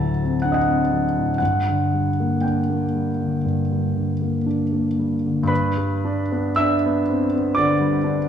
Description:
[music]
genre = classical, romantic nocturne for solo piano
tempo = 53-66 BPM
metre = 4/4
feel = rubato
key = G minor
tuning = A4 = 440 Hz
[part]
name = warm concert grand piano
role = solo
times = 0.0-8.3 s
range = D2 to E6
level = -19 LUFS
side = equal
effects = none
[sound]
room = wet recital hall reverb, RT60 1.5 s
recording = none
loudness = -19 LUFS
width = side -8 dB against mid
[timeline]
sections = 0.0-5.5 A section; 5.5-8.3 B section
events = none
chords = 0.0 D7; 1.4 Gm; 5.5 G

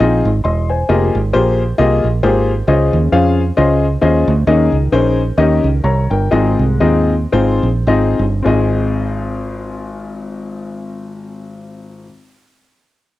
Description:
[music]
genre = uptempo gospel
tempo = 101-134 BPM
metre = 4/4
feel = swing 56% on 8ths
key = Ab major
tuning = A4 = 440 Hz
[part]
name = clear concert grand piano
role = accompaniment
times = 0.0-12.1 s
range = Ab1 to C6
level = -15 LUFS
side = left 3 dB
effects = cassette tape
[part]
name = fingered electric bass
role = bass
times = 0.0-12.0 s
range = Fb1 to F2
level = -15 LUFS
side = right 2 dB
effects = transformer saturation
[sound]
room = light reverb, small room ambience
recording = home recording on cassette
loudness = -12 LUFS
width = side -15 dB against mid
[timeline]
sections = 0.9-8.4 A section; 8.4-13.2 B section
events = slowing down 4.5-8.4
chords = 0.0 Ab6; 0.9 Fm11; 2.7 Dbmaj9; 4.5 Eb7sus4; 5.4 Eb7; 6.3 Ab6

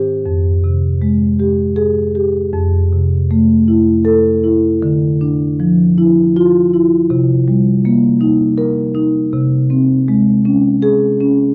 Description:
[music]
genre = classical, contemporary piece for solo marimba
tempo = 79 BPM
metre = 3/4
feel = rubato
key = unclear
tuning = A4 = 443 Hz
[part]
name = marimba with soft mallets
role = solo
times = 0.0-11.5 s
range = F2 to Bb4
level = -13 LUFS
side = equal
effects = none
[sound]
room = light reverb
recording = dark, warm production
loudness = -13 LUFS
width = mono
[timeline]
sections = 0.0-11.5 A section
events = none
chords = 0.2 Fmadd9; 2.5 Fmaj7; 4.8 Dmadd9; 7.1 Cm7; 9.3 Abadd11/C

